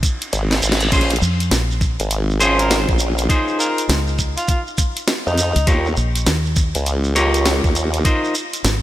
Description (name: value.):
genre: glitch hop.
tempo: 101 BPM.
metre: 4/4.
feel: swing 62% on 16ths.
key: Bb dorian.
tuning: A4 = 440 Hz.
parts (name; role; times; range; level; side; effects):
semi-hollow electric guitar; stabs; 0.0-8.3 s; Db4 to Db5; -21 LUFS; equal; sidechain pumping, ping-pong delay.
drum and bass drum kit; drums; 0.0-8.8 s; crash cymbal, hi-hat, snare drum; -22 LUFS; equal; none.
electronic kick drum; drums; 0.0-8.2 s; none; -18 LUFS; equal; none.
shekere; percussion; 0.0-8.8 s; none; -26 LUFS; right 3 dB; none.
reverse cymbal; sound effects; 0.1-0.9 s; none; -27 LUFS; right 1 dB; none.
formant-sweep wobble bass; bass; 0.3-8.0 s; Ab1 to F2; -19 LUFS; equal; chorus.
deep dub fingered electric bass; bass; 1.2-8.8 s; Ab1 to F2; -19 LUFS; equal; none.
overdriven harmonica; melody; 2.6-5.7 s; Eb4 to Bb4; -26 LUFS; equal; ping-pong delay.
room: light reverb, digital ambience.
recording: bright 1980s-style digital production.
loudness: -15 LUFS.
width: side -14 dB against mid.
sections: 0.0-8.8 A section.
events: reverse cymbal 0.1-0.9; drum fill 0.3-0.9.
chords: 0.0 Ab6; 0.9 Bbm7; 3.3 Dbmaj7; 5.7 Eb7; 8.1 Ab6.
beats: 0.33 | 0.92 1.52 2.11 2.71 | 3.30 3.89 4.49 5.08 | 5.67 6.27 6.86 7.46 | 8.05 8.65.